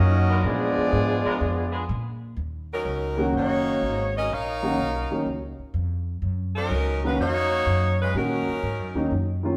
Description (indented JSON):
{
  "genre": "jazz, big band swing",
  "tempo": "124 BPM",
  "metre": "4/4",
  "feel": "swing 68% on 8ths",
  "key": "Eb minor",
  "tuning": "A4 = 438 Hz",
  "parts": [
    { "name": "bright trumpet section", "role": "melody", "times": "0.0-1.8 s", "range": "Cb4 to Eb5", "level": "-29 LUFS", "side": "equal", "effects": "none" },
    { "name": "warm trombone section", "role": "second line", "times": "0.0-1.8 s", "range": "F3 to Eb4", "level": "-29 LUFS", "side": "equal", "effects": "none" },
    { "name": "upright bass", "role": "bass", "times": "0.0-9.6 s", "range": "Gb1 to Bb2", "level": "-28 LUFS", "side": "equal", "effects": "none" },
    { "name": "clear saxophone section", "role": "sustained chords", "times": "0.3-1.8 s", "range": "Ab3 to Bb4", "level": "-35 LUFS", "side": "equal", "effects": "none" },
    { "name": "clear saxophone section", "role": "melody", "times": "2.7-9.1 s", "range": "Gb3 to F5", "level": "-28 LUFS", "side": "equal", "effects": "none" },
    { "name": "dark baby grand piano", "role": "accompaniment", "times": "3.2-9.6 s", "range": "Eb3 to Gb4", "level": "-29 LUFS", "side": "equal", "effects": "none" }
  ],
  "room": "wet stone room reverb, RT60 1.4 s",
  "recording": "band playing live in one room",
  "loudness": "-25 LUFS",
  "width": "mono",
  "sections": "0.0-2.4 A section; 2.4-9.6 B section",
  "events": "none",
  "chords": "0.4 Bb7b9; 2.4 Ebm7"
}